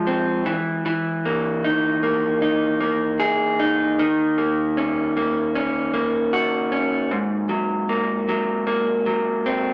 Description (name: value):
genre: indie pop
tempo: 77 BPM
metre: 4/4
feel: straight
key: unclear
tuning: A4 = 438 Hz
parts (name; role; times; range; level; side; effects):
- electric guitar through a small old amp; solo; 0.0-9.7 s; Ab2 to G#4; -22 LUFS; equal; warbly pitch drift
room: moderate large studio reverb, RT60 1.1 s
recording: none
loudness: -22 LUFS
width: mono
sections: 0.0-9.7 A section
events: none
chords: 0.5 Emaj7#11; 4.0 Ebm7; 7.1 Ab7sus2